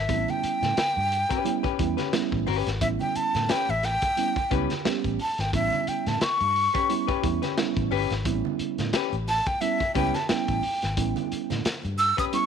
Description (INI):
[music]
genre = funk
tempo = 88 BPM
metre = 4/4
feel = swing 56% on 16ths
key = A mixolydian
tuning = A4 = 441 Hz
[part]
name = breathy jazz flute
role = melody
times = 0.0-12.5 s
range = E5 to E6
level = -26 LUFS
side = equal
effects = tape echo
[part]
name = vintage muted fingered electric bass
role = bass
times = 0.0-12.1 s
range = G1 to A2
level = -30 LUFS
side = left 2 dB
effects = none
[part]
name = mellow reed electric piano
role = stabs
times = 0.1-12.5 s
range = G3 to G4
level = -29 LUFS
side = right 12 dB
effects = none
[part]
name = crunchy breakbeat drum kit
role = drums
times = 0.1-12.5 s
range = hi-hat, kick drum, snare drum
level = -30 LUFS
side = left 1 dB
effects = none
[part]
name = congas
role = percussion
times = 0.1-12.0 s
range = none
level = -38 LUFS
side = right 9 dB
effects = none
[part]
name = hollow-body jazz guitar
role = accompaniment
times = 1.3-12.4 s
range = C#4 to B4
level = -30 LUFS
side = left 15 dB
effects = none
[sound]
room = light reverb, small room reverb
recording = 1960s-style stereo with parts hard left and right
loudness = -23 LUFS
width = side -7 dB against mid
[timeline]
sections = 0.0-12.5 A section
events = flute solo 0.0-12.5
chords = 0.0 A9